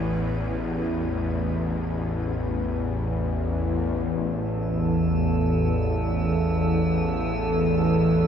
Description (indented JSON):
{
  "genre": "dark ambient drone",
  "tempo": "free time",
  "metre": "none",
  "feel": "none",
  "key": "unclear",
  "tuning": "A4 = 440 Hz",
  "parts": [
    { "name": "granular cloud pad", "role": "sustained chords", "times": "0.0-4.1 s", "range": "A3 to B5", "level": "-41 LUFS", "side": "right 1 dB", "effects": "none" },
    { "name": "bowed-like drone", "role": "drone", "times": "0.0-8.3 s", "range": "A1 to E2", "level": "-23 LUFS", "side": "equal", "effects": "built-in reverb" },
    { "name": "metallic inharmonic drone", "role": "texture", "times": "4.5-8.3 s", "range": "A4", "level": "-28 LUFS", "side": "equal", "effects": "chorus, built-in reverb" }
  ],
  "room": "wet huge ambient reverb, RT60 7.2 s",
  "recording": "none",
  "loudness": "-22 LUFS",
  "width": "side -8 dB against mid",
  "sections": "0.0-4.0 A section; 4.0-8.3 B section",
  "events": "fade-out on ambient pad 0.0-4.0",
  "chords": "0.0 Asus2; 4.0 A5",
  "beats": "free time"
}